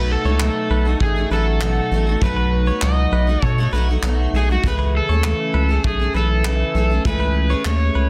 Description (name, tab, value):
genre	acoustic pop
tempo	99 BPM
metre	4/4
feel	straight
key	unclear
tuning	A4 = 436 Hz
part	overdriven slide guitar	melody	0.0-8.1 s	F#4 to D#5	-26 LUFS	equal	delay
part	picked steel-string acoustic guitar	accompaniment	0.0-8.1 s	B2 to G#4	-26 LUFS	equal	double-tracked
part	direct-recorded clean electric guitar	arpeggios	0.0-8.1 s	A3 to C#5	-32 LUFS	equal	none
part	round analog bass	bass	0.0-8.1 s	A1 to B2	-21 LUFS	equal	none
part	natural country drum kit	drums	0.4-7.8 s	handclaps, kick drum	-26 LUFS	equal	soft clipping on snare
room	light reverb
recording	dense, heavily limited modern master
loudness	-19 LUFS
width	mono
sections	0.0-8.1 A section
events	none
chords	0.0 B7; 4.6 Amaj7